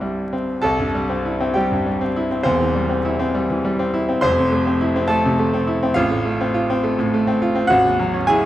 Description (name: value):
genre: classical, virtuoso piano study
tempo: 68 BPM (dotted quarters)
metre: 6/8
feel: rubato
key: C major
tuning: A4 = 436 Hz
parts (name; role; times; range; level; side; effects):
- bright grand piano; solo; 0.0-8.5 s; E1 to C6; -17 LUFS; equal; none
room: wet recital hall reverb, RT60 1.7 s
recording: vinyl crackle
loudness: -17 LUFS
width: side -13 dB against mid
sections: 0.6-8.5 A section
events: none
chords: 0.0 C; 2.5 C/E; 4.2 Fmaj7; 6.0 F/A; 7.7 F#m7/A